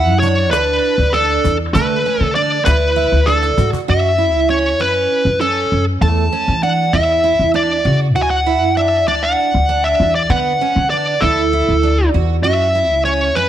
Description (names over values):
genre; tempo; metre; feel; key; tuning
progressive instrumental, band music in an uneven meter; 196 BPM (eighths); 7/8; straight; unclear; A4 = 439 Hz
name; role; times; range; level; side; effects
smooth overdriven lead guitar; melody; 0.0-13.5 s; A4 to A5; -15 LUFS; left 1 dB; slapback echo
picked twelve-string acoustic guitar; arpeggios; 0.0-13.5 s; A3 to F#4; -20 LUFS; right 10 dB; none
upright bass; bass; 0.0-13.5 s; C#2 to E3; -18 LUFS; left 1 dB; none
cajon; drums; 0.2-13.4 s; none; -28 LUFS; left 7 dB; none
room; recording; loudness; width
light reverb, small room ambience; 1960s-style stereo with parts hard left and right; -13 LUFS; side -11 dB against mid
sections
0.0-3.9 A section; 3.9-13.5 B section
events
drum fill 3.3-3.9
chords
0.0 Bm7/D; 3.9 F#7sus4; 6.0 E7sus4; 8.2 Bm7/D (rootless); 12.4 F#7(no3)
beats
0.22 0.52 0.83 1.13 1.44 | 1.74 2.05 2.35 2.66 2.96 3.27 3.58 | 3.88 4.19 4.49 4.80 5.10 5.41 5.71 | 6.02 6.33 6.63 6.94 7.24 7.55 7.86 | 8.16 8.47 8.77 9.08 9.38 9.69 10.00 | 10.30 10.61 10.91 11.22 11.53 11.83 12.14 | 12.45 12.75 13.06 13.37